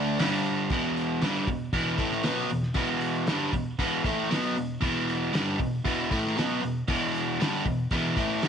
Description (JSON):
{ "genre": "garage rock duo or trio", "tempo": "117 BPM", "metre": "4/4", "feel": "straight", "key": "unclear", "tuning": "A4 = 437 Hz", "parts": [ { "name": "biting overdriven guitar", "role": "riff", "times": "0.0-8.5 s", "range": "E2 to D4", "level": "-26 LUFS", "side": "equal", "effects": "none" }, { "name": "cloth-damped thuddy drum kit", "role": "drums", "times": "0.2-8.5 s", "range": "hi-hat, kick drum, snare drum", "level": "-32 LUFS", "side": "equal", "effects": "none" } ], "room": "light reverb, studio reverb", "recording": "nothing above 10.3 kHz", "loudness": "-25 LUFS", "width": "side -7 dB against mid", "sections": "0.7-8.5 A section", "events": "none", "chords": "0.2 G5; 0.7 E5", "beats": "0.20 | 0.71 1.23 1.74 2.25 | 2.77 3.28 3.80 4.31 | 4.83 5.34 5.86 6.37 | 6.89 7.40 7.92 8.43" }